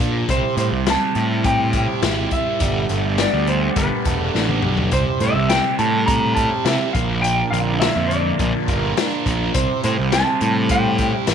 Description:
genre	psychedelic rock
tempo	104 BPM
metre	4/4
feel	straight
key	C mixolydian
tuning	A4 = 442 Hz
part	hand-pumped harmonium	sustained chords	0.0-11.3 s	F3 to C5	-28 LUFS	right 12 dB	none
part	thick fuzz guitar	riff	0.0-11.3 s	Bb2 to Bb4	-23 LUFS	right 1 dB	distortion, phaser
part	fuzz picked electric bass	bass	0.0-11.3 s	E1 to C3	-21 LUFS	right 1 dB	overdrive
part	raw garage drum kit	drums	0.0-11.3 s	hi-hat, kick drum, snare drum, toms	-23 LUFS	left 4 dB	none
part	clean lap steel guitar	melody	0.3-11.3 s	B4 to Bb5	-22 LUFS	equal	slapback echo
room	light reverb, studio reverb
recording	1960s-style stereo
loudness	-16 LUFS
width	side -8 dB against mid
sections	0.0-11.3 A section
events	drum fill 4.3-4.9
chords	0.3 C; 2.6 Gadd9; 4.9 C; 6.9 Bb; 9.5 C

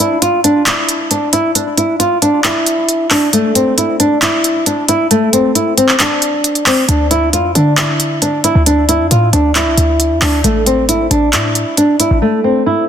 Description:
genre	hip hop, trap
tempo	135 BPM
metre	4/4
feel	half-time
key	A minor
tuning	A4 = 440 Hz
part	flamenco guitar	melody	0.0-12.8 s	A3 to F4	-12 LUFS	equal	low-pass filter, ping-pong delay
part	trap drum kit	drums	0.0-12.1 s	handclaps, hi-hat	-14 LUFS	right 1 dB	overdrive
part	short 808-style bass	bass	6.9-12.2 s	A1 to D3	-15 LUFS	equal	none
room	light reverb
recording	dense, heavily limited modern master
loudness	-10 LUFS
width	side -9 dB against mid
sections	0.0-12.9 A section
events	break 0.0-6.9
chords	0.0 N.C.; 10.4 A5

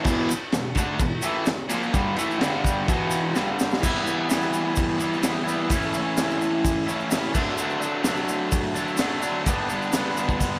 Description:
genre	garage rock duo or trio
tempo	128 BPM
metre	4/4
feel	straight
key	E minor, E dorian from 3.8 s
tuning	A4 = 440 Hz
part	raw garage guitar	riff	0.0-10.6 s	E2 to E4	-26 LUFS	equal	overdrive
part	crunchy breakbeat drum kit	drums	0.0-10.5 s	crash cymbal, hi-hat, kick drum, ride cymbal, snare drum	-29 LUFS	equal	none
part	tube shaker	percussion	0.1-10.5 s	none	-38 LUFS	equal	none
room	light reverb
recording	none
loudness	-24 LUFS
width	mono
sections	0.0-3.8 A section; 3.8-10.6 B section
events	drum fill 3.4-3.8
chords	0.1 Em; 2.4 G5; 2.9 E5; 3.4 G5; 3.8 Em; 5.7 A; 7.3 D; 9.5 G

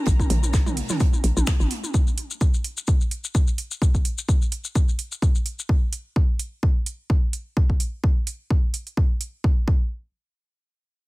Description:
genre	minimal techno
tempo	128 BPM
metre	4/4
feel	swing 55% on 16ths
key	Bb minor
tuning	A4 = 440 Hz
part	warm symphonic string section	texture	0.0-1.9 s	Db4 to Bb5	-42 LUFS	left 3 dB	sidechain pumping
part	hollow knocking FM bass	bass	0.1-1.7 s	Ab1 to Bb1	-22 LUFS	equal	sidechain pumping
part	electronic kick drum	drums	0.1-9.8 s	none	-20 LUFS	equal	small room ambience
part	loose indie drum kit	drums	0.1-1.8 s	hi-hat, snare drum	-37 LUFS	right 3 dB	high-pass filter on hats, small room ambience, high-pass filter on snare, high-pass filter on room
part	maracas	percussion	0.1-5.7 s	none	-32 LUFS	left 5 dB	none
part	electronic toms	percussion	0.2-1.9 s	none	-29 LUFS	right 1 dB	small room ambience, digital delay
part	house drum kit	drums	0.3-9.3 s	finger snaps, hi-hat	-29 LUFS	right 4 dB	small room ambience
room	little or no reverb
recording	none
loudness	-20 LUFS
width	side -22 dB against mid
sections	0.0-9.4 A section; 9.4-11.1 B section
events	fade-out on string section 0.0-1.9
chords	0.0 Bbm; 9.4 N.C.

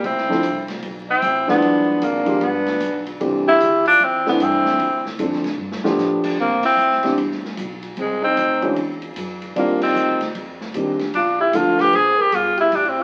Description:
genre	jazz, small-group swing and bop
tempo	151 BPM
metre	4/4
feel	swing 64% on 8ths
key	C major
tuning	A4 = 440 Hz
part	clear tenor saxophone	melody	0.0-13.0 s	Ab3 to Ab4	-20 LUFS	equal	none
part	clear alto saxophone	second line	0.0-13.0 s	C4 to C5	-27 LUFS	equal	none
part	upright bass	bass	0.0-13.0 s	G1 to A2	-37 LUFS	equal	none
part	open jazz drum kit	drums	0.0-12.8 s	crash cymbal, hi-hat, kick drum, ride cymbal, snare drum	-34 LUFS	equal	none
part	dark concert grand piano	accompaniment	0.3-11.9 s	D3 to D5	-23 LUFS	equal	none
room	wet large studio reverb, RT60 1.2 s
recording	very old 78 rpm record, vinyl crackle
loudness	-19 LUFS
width	mono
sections	0.0-6.4 A section; 6.4-13.0 B section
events	drum fill 5.6-6.0; band accent 6.6, 9.8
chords	0.0 Dm9; 1.6 G7b9; 3.2 C69; 4.8 Dm7; 5.6 G9; 6.4 Cmaj9; 8.0 Ab7#11/C; 8.8 Esus2; 9.6 Ebmaj13; 11.1 Bm7b5; 11.9 C7(no3)

